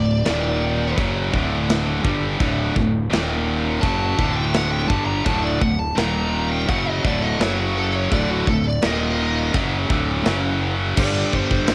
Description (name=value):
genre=heavy metal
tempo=84 BPM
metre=4/4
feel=straight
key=unclear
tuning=A4 = 440 Hz
part: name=high-gain lead guitar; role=melody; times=0.0-11.7 s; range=F#4 to Bb5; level=-29 LUFS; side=equal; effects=distortion, cassette tape, analog delay
part: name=heavy high-gain guitar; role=riff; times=0.0-11.7 s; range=D2 to G3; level=-27 LUFS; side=equal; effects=distortion
part: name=tight distorted guitar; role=riff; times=0.0-11.7 s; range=D2 to G3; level=-27 LUFS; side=equal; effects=distortion
part: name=fuzz fingered electric bass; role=bass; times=0.0-11.7 s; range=D1 to G1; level=-27 LUFS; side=equal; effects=overdrive
part: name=big rock drum kit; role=drums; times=0.3-11.7 s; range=china cymbal, crash cymbal, kick drum, snare drum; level=-27 LUFS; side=equal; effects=cassette tape
room=studio reverb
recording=home recording on cassette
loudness=-21 LUFS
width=mono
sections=0.0-11.0 A section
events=lead electric guitar solo 0.0-11.0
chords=0.3 Eb5; 1.0 D; 3.1 Eb5; 3.8 D; 6.0 Eb5; 6.7 D; 7.4 F#5; 8.1 D5; 8.8 Eb5; 9.5 D; 10.3 F#5; 11.0 G5